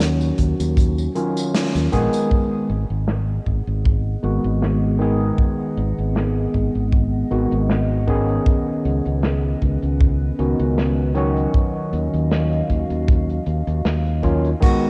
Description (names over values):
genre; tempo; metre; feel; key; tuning
vaporwave; 78 BPM; 4/4; swing 54% on 16ths; G# dorian; A4 = 440 Hz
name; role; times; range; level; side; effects
overdriven tine electric piano; accompaniment; 0.0-14.9 s; D#3 to G#4; -24 LUFS; equal; lush chorus, vintage 12-bit sampler grit, tape echo
fingered electric bass; bass; 0.0-14.5 s; G#1 to D#2; -23 LUFS; equal; none
natural country drum kit; drums; 0.0-14.8 s; crash cymbal, hi-hat, snare drum, tambourine; -29 LUFS; equal; low-pass filter on hats, vintage 12-bit sampler grit, low-pass filter on cymbals, low-pass filter on snare, low-pass filter on perc, low-pass filter on room
kick drum; drums; 0.4-14.8 s; none; -21 LUFS; equal; vintage 12-bit sampler grit
warbly tape-like pad; sustained chords; 3.3-14.9 s; G#3 to F#5; -34 LUFS; equal; chorus, built-in reverb, phaser
room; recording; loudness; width
moderate lush hall reverb, RT60 2.2 s; rough home demo mix, cassette tape; -20 LUFS; mono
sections
0.0-2.3 A section; 2.3-14.6 B section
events
band accent 1.5-1.9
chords
0.0 D#m9; 2.3 G#m7; 8.5 C#9sus4; 11.5 D#m9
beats
0.01 0.77 1.54 | 2.31 3.08 3.85 4.62 | 5.39 6.16 6.93 7.70 | 8.47 9.23 10.01 10.77 | 11.54 12.31 13.08 13.85 | 14.62